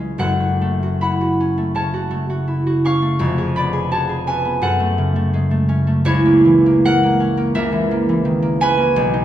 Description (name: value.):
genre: classical, solo harp piece.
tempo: 82 BPM.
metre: 4/4.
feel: uneven beats, rubato.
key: unclear.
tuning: A4 = 440 Hz.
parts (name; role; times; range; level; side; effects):
concert harp; solo; 0.0-9.2 s; E#1 to C#6; -15 LUFS; equal; none.
room: wet recital hall reverb, RT60 1.8 s.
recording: recorded in a church or concert hall.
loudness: -15 LUFS.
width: side -11 dB against mid.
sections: 0.0-9.2 A section.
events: none.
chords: 0.2 F#m; 3.2 C#7/E#; 4.6 F#m; 6.0 A#dim/C#.